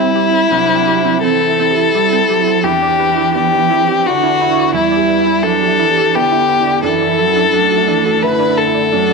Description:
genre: neoclassical piano and strings.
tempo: 86 BPM.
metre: 3/4.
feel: rubato.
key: E minor.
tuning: A4 = 440 Hz.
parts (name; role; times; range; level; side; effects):
rich violin; melody; 0.0-9.1 s; E4 to B4; -13 LUFS; left 7 dB; slapback echo.
warm cello; second line; 0.0-9.1 s; D3 to G3; -20 LUFS; right 15 dB; none.
felt-muted upright piano; accompaniment; 0.0-9.1 s; C2 to G5; -22 LUFS; right 13 dB; none.
rich viola; accompaniment; 0.0-9.1 s; B3 to E4; -21 LUFS; right 14 dB; none.
ethereal airy pad; sustained chords; 0.0-9.1 s; A3 to D5; -25 LUFS; right 1 dB; ensemble chorus, built-in reverb, phaser.
hollow square pluck; arpeggios; 0.0-9.1 s; C4 to D5; -23 LUFS; right 13 dB; chorus, slapback echo.
room: moderate spring reverb, RT60 2.2 s.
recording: 1960s-style stereo with parts hard left and right.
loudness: -11 LUFS.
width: side -3 dB against mid.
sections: 0.0-9.1 A section.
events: none.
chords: 0.0 C; 2.6 Em7; 6.8 Dadd9/F#.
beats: | 0.52 1.23 1.94 | 2.64 3.34 4.04 | 4.73 5.43 6.14 | 6.84 7.53 8.22 | 8.93.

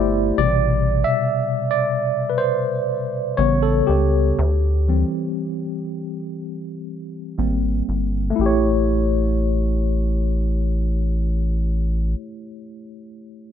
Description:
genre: contemporary R&B.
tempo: 60 BPM.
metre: 4/4.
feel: straight.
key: unclear.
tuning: A4 = 440 Hz.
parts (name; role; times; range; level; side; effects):
tine electric piano; accompaniment; 0.0-13.5 s; B2 to E5; -21 LUFS; left 1 dB; medium stereo tremolo.
rubbery square bass; bass; 0.0-12.1 s; G1 to D2; -20 LUFS; equal; none.
room: light reverb, digital ambience.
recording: low-pass filter.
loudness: -18 LUFS.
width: side -9 dB against mid.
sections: 0.4-8.4 A section; 8.4-12.4 B section.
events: tine electric piano fill 0.0-0.4; tine electric piano solo 0.4-8.4; filter sweep 0.4-8.4.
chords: 0.4 Am7; 3.4 A7; 4.4 D7sus4; 7.4 G#maj7; 8.4 A7.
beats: | 0.39 1.39 2.38 3.38 | 4.38 5.38 6.38 7.38 | 8.38 9.38 10.38 11.38.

